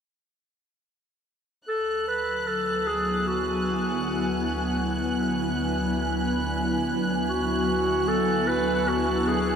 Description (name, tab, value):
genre	ambient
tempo	free time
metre	none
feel	none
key	D lydian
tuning	A4 = 440 Hz
part	mellow clarinet	melody	1.7-9.6 s	F#4 to B4	-27 LUFS	equal	tape echo
part	ethereal airy pad	sustained chords	2.4-9.6 s	D2 to G#5	-26 LUFS	equal	ensemble chorus, built-in reverb
part	bowed-like drone	drone	5.8-9.6 s	D3 to D4	-44 LUFS	right 2 dB	none
part	warm studio violin section	texture	1.7-9.6 s	F#6	-33 LUFS	equal	none
room	wet shimmer reverb, RT60 8.4 s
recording	none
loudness	-23 LUFS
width	side -7 dB against mid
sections	1.7-9.6 A section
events	none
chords	1.7 Dadd9